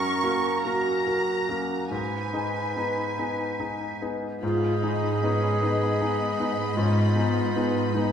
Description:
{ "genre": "cinematic", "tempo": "47-53 BPM (dotted quarters)", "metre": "6/8", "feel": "rubato", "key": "G# dorian", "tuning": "A4 = 441 Hz", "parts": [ { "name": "rich studio violin section", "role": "melody", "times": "0.0-4.0 s", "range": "G#5 to C#6", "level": "-32 LUFS", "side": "right 1 dB", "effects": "none" }, { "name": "clear clarinet", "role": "second line", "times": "0.0-8.1 s", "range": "C#4 to G#4", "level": "-30 LUFS", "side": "equal", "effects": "none" }, { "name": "silver concert flute", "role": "second line", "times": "0.0-4.0 s", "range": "A#6 to B6", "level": "-34 LUFS", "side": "equal", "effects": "none" }, { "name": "warm cor anglais", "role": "second line", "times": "0.0-3.8 s", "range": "A#4 to B4", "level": "-33 LUFS", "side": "right 4 dB", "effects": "none" }, { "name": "bright grand piano", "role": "accompaniment", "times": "0.0-8.1 s", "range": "F#2 to A#4", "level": "-29 LUFS", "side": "left 1 dB", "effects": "none" }, { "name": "warm studio violin section", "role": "second line", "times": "4.4-8.1 s", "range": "D#5 to B5", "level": "-32 LUFS", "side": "left 3 dB", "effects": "none" }, { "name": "warm symphonic viola section", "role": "accompaniment", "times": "4.4-8.1 s", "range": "B3 to E#4", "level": "-31 LUFS", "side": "right 2 dB", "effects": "none" }, { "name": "concert harp", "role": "arpeggios", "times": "4.4-8.1 s", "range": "G#2 to B4", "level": "-30 LUFS", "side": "left 3 dB", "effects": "none" }, { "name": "warm studio cello section", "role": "bass", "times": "4.4-8.1 s", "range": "G#2", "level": "-28 LUFS", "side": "right 2 dB", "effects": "none" } ], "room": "wet scoring stage reverb, RT60 1.9 s", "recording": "heard from further back in the room", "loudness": "-23 LUFS", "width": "side -8 dB against mid", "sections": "0.0-4.4 A section; 4.4-8.1 A section", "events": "none", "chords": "0.0 F#; 1.9 G#m", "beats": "0.65 | 1.91 3.18 | 4.42 5.62 | 6.78 7.96" }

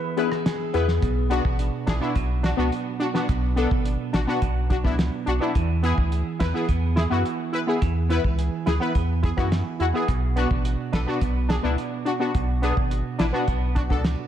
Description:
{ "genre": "dancehall", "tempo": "106 BPM", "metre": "4/4", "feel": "straight", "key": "B dorian", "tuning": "A4 = 441 Hz", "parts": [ { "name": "clean electric guitar", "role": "arpeggios", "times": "0.0-14.3 s", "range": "B2 to B4", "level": "-30 LUFS", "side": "right 8 dB", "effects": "wide subtle chorus, diffuse ambient delay" }, { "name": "steel pan", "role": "melody", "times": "0.2-0.8 s", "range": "G#4", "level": "-29 LUFS", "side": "left 10 dB", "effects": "diffuse ambient delay" }, { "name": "synth brass stab", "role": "accompaniment", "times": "0.2-14.0 s", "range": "B3 to B4", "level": "-26 LUFS", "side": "left 2 dB", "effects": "chorus, sidechain pumping" }, { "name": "cloth-damped thuddy drum kit", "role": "drums", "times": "0.2-14.2 s", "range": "hi-hat, kick drum, rim click, snare drum", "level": "-26 LUFS", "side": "equal", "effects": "none" }, { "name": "warm sub bass", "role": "bass", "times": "0.7-14.2 s", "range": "G#1 to F#2", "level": "-24 LUFS", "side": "equal", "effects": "none" } ], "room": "light reverb, small room ambience", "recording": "none", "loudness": "-21 LUFS", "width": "side -10 dB against mid", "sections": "0.0-1.0 A section; 1.0-14.3 B section", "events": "break 0.0-1.0", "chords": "0.0 E; 1.0 Bm; 5.6 E; 10.1 Bm", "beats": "0.46 | 1.02 1.59 2.16 2.72 | 3.29 3.85 4.42 4.99 | 5.55 6.12 6.69 7.25 | 7.82 8.38 8.95 9.52 | 10.08 10.65 11.21 11.78 | 12.35 12.91 13.48 14.04" }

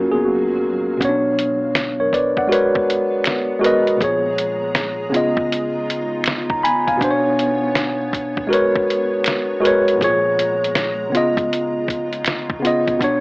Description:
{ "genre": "lo-fi hip hop", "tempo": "80 BPM", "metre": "4/4", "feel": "swing 64% on 16ths", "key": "unclear", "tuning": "A4 = 440 Hz", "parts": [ { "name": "mellow tine electric piano", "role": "accompaniment", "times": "0.0-13.2 s", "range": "F#2 to B5", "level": "-17 LUFS", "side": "equal", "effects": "medium stereo tremolo" }, { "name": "granular cloud pad", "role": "sustained chords", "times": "0.0-13.2 s", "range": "A#2 to A#5", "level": "-29 LUFS", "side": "equal", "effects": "built-in reverb" }, { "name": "lo-fi sampler-style drum kit", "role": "drums", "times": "1.0-13.2 s", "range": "hi-hat, kick drum, snare drum", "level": "-22 LUFS", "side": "equal", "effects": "none" }, { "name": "finger snap", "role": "percussion", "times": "1.8-12.5 s", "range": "none", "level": "-23 LUFS", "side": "right 1 dB", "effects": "none" } ], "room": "moderate small room reverb, RT60 0.5 s", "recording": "AM radio sound", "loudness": "-16 LUFS", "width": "side -26 dB against mid", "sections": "0.0-1.0 A section; 1.0-13.2 B section", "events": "break 0.0-1.0; tine electric piano solo 0.0-1.0", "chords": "0.0 F#maj9; 1.0 Bmadd9; 2.5 G#m11; 4.0 A#m7; 5.1 C#9; 7.0 Bmadd9; 8.5 G#m11; 10.0 A#m7; 11.1 C#9", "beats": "0.26 | 1.01 1.76 2.51 3.26 | 4.01 4.76 5.51 6.26 | 7.01 7.76 8.51 9.26 | 10.01 10.76 11.51 12.26 | 13.01" }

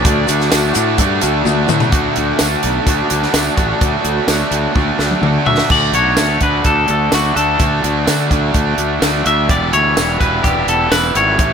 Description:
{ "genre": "indie rock", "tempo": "127 BPM", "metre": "4/4", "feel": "straight", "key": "D major", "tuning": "A4 = 439 Hz", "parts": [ { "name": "twangy electric guitar", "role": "melody", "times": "0.0-1.4, 5.5-11.5 s", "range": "F#4 to E5", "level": "-16 LUFS", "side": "left 2 dB", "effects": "plate reverb" }, { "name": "bright trumpet", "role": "second line", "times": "0.0-1.4 s", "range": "D4", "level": "-28 LUFS", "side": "right 7 dB", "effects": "none" }, { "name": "ensemble organ-string", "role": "sustained chords", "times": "0.0-5.7 s", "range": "F#4 to A5", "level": "-25 LUFS", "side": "left 1 dB", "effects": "phaser, ensemble chorus, plate reverb" }, { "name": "raw garage guitar", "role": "riff", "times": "0.0-11.5 s", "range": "E2 to F#4", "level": "-17 LUFS", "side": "right 2 dB", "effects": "overdrive" }, { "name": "fuzz fingered electric bass", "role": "bass", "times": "0.0-11.5 s", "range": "E1 to D3", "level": "-19 LUFS", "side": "equal", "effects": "overdrive" }, { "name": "compact cocktail drum kit", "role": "drums", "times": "0.0-11.5 s", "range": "crash cymbal, hi-hat, kick drum, snare drum, tambourine, toms", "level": "-17 LUFS", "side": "equal", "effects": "none" }, { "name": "tube shaker", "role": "percussion", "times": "0.0-1.9 s", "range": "none", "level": "-26 LUFS", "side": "left 20 dB", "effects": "none" } ], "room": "light reverb", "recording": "none", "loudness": "-12 LUFS", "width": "side -7 dB against mid", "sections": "0.0-1.9 A section; 1.9-5.7 B section; 5.7-11.5 C section", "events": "drum fill 1.5-1.9, 4.8-5.7", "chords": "0.0 D; 9.5 Em", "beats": "| 0.05 0.51 0.98 1.45 | 1.92 2.39 2.86 3.33 | 3.81 4.28 4.75 5.22 | 5.70 6.17 6.65 7.12 | 7.59 8.07 8.54 9.02 | 9.49 9.96 10.44 10.91 | 11.39" }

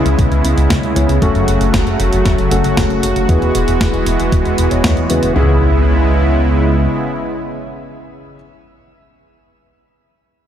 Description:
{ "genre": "synthwave", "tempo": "116 BPM", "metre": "4/4", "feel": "straight", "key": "C# minor", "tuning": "A4 = 440 Hz", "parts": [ { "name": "soft supersaw", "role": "sustained chords", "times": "0.0-8.4 s", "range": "C#3 to F#4", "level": "-16 LUFS", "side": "right 1 dB", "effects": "sidechain pumping, shimmer reverb" }, { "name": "warm electric grand piano", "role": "stabs", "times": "0.0-8.4 s", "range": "C#3 to C#5", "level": "-21 LUFS", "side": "left 2 dB", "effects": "low-pass filter, diffuse ambient delay, shimmer reverb" }, { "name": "chorused synth bass", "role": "bass", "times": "0.0-6.9 s", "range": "D1 to E2", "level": "-15 LUFS", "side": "equal", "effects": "none" }, { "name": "clean 12-bit digital drum machine", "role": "drums", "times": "0.1-5.3 s", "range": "hi-hat, snare drum", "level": "-22 LUFS", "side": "equal", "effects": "none" }, { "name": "electronic kick drum", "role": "drums", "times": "0.2-4.9 s", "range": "none", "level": "-17 LUFS", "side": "equal", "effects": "none" }, { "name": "impact", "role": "sound effects", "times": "5.4-8.4 s", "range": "none", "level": "-25 LUFS", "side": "equal", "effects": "none" } ], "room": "moderate plate reverb, RT60 1.5 s", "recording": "dreamy mix soaked in reverb", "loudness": "-12 LUFS", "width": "side -10 dB against mid", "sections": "0.0-5.4 A section; 5.4-9.5 B section", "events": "filter sweep on electric grand piano 0.0-5.4", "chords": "0.0 C#m7; 1.2 F#m; 3.3 Eadd9; 5.4 C#m7", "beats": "0.18 0.70 | 1.22 1.74 2.25 2.77 | 3.29 3.81 4.32 4.84 | 5.36 5.87 6.39 6.91 | 7.43 7.94" }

